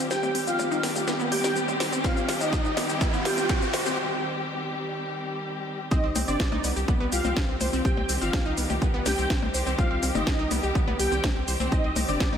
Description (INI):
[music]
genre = melodic techno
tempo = 124 BPM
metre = 4/4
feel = straight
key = C harmonic minor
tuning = A4 = 439 Hz
[part]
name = rich chamber string section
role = sustained chords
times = 0.0-12.4 s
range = Eb3 to G4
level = -32 LUFS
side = left 2 dB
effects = sidechain pumping
[part]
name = wide unison pluck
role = arpeggios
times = 0.0-12.4 s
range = B3 to C5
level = -31 LUFS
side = right 1 dB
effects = vintage 12-bit sampler grit, sidechain pumping, analog delay
[part]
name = riser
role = sound effects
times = 0.0-4.0 s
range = none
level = -33 LUFS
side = equal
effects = none
[part]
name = soft octave-layered synth lead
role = melody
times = 0.1-12.4 s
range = D4 to G4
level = -33 LUFS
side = left 1 dB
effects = chorus, tremolo, sidechain pumping, ping-pong delay
[part]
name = big bright polysynth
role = second line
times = 0.1-12.4 s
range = D5 to G5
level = -33 LUFS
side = right 1 dB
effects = ensemble chorus, cassette tape, sidechain pumping, analog delay
[part]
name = techno drum kit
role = drums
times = 0.1-12.4 s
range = hi-hat, percussion blips, shaker, snare drum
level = -30 LUFS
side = left 1 dB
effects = high-pass filter on perc, high-pass filter on snare, high-pass filter on hats, high-pass filter on room
[part]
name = electronic kick drum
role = drums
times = 2.0-12.3 s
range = none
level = -26 LUFS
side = equal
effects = none
[part]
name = round analog bass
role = bass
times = 5.9-12.4 s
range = G1 to C2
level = -30 LUFS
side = equal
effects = sidechain pumping
[sound]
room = moderate church reverb, RT60 2.9 s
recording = dreamy mix soaked in reverb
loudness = -23 LUFS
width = side -8 dB against mid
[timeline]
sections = 0.0-5.9 A section; 5.9-12.4 B section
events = build-up 0.0-5.9; drum fill 0.0-4.0; riser 0.0-4.0; filter sweep on synth arpeggio sound 0.0-5.9; break 4.0-5.9; drop 5.9-12.4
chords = 0.0 Cm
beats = | 0.11 0.59 1.07 1.56 | 2.04 2.53 3.01 3.49 | 3.98 4.46 4.95 5.43 | 5.91 6.40 6.88 7.37 | 7.85 8.33 8.82 9.30 | 9.79 10.27 10.75 11.24 | 11.72 12.20